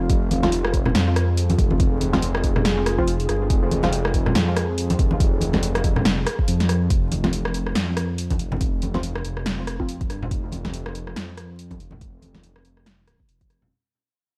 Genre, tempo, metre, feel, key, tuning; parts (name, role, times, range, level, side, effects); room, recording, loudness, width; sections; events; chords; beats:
deep dubstep; 141 BPM; 4/4; swing 58% on 16ths, half-time; F minor; A4 = 440 Hz
deep dark ambient pad; sustained chords; 0.0-7.0 s; F4 to F5; -33 LUFS; equal; chorus, built-in reverb, vintage 12-bit sampler grit
dark detuned saw bass; bass; 0.0-13.7 s; F1 to F2; -26 LUFS; equal
deep house drum kit; drums; 0.1-13.6 s; hi-hat, rim click, snare drum; -28 LUFS; equal; overdrive
electronic kick drum; drums; 0.1-13.5 s; -24 LUFS; equal; overdrive
congas; percussion; 0.3-13.7 s; -29 LUFS; equal
filtered dub chord stab; stabs; 0.4-3.9, 7.2-10.5 s; F3 to F4; -32 LUFS; equal; phaser, lush chorus, dub echo
digital ambience; dry, gritty hardware recording, vinyl crackle; -22 LUFS; mono
0.0-6.9 A section; 6.9-13.7 B section
drop 0.0-6.9; fade-out 6.9-13.7
0.0 F5
| 0.10 0.52 0.95 1.37 | 1.80 2.22 2.65 3.08 | 3.50 3.93 4.35 4.78 | 5.20 5.63 6.05 6.48 | 6.91 7.33 7.76 8.18 | 8.61 9.03 9.46 9.88 | 10.31 10.73 11.16 11.59 | 12.01 12.44 12.86 13.29